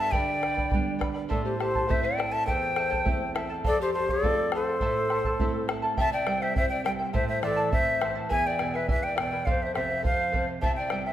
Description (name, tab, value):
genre	andean folk, Andean ensemble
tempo	103 BPM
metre	2/4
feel	straight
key	A minor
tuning	A4 = 440 Hz
part	large quena	melody	0.0-11.1 s	C5 to A5	-28 LUFS	equal	none
part	polished pan flute	second line	0.0-11.1 s	G4 to E5	-31 LUFS	left 3 dB	none
part	charango	accompaniment	0.0-11.1 s	E4 to B5	-34 LUFS	equal	none
part	nylon-string guitar	accompaniment	0.0-11.1 s	E2 to F4	-34 LUFS	right 4 dB	none
part	bombo	percussion	0.1-11.0 s	none	-31 LUFS	equal	none
room	moderate recital hall reverb, RT60 1.6 s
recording	none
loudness	-24 LUFS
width	side -12 dB against mid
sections	0.0-6.0 A section; 6.0-11.1 B section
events	none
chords	0.0 G; 1.3 Am; 3.6 F; 4.8 Am; 6.0 C; 7.1 Am; 8.3 E; 9.5 F; 10.6 C